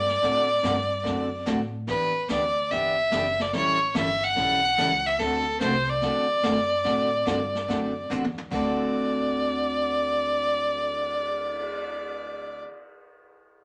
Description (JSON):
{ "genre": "country, western swing", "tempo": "145 BPM", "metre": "4/4", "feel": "swing 67% on 8ths", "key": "D mixolydian", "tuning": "A4 = 441 Hz", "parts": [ { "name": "clear fiddle", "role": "melody", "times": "0.0-12.6 s", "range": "A4 to F#5", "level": "-27 LUFS", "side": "equal", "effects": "none" }, { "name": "upright bass", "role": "bass", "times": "0.0-12.6 s", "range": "F#1 to A2", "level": "-40 LUFS", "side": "equal", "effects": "none" }, { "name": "vintage brush drum kit", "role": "drums", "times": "0.1-11.8 s", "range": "brushed snare drum, crash cymbal, cymbal swell, hi-hat, kick drum, snare drum, toms", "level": "-36 LUFS", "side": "equal", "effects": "none" }, { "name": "picked steel-string acoustic guitar", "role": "accompaniment", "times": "0.2-12.7 s", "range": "D3 to A4", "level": "-32 LUFS", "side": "equal", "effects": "none" } ], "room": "wet small room reverb, RT60 0.6 s", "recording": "none", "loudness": "-25 LUFS", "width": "mono", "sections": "0.0-8.5 A section; 8.5-11.8 B section", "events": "drum fill 8.1-8.5", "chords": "0.0 D7; 1.9 Em7; 3.5 A7; 5.2 D7" }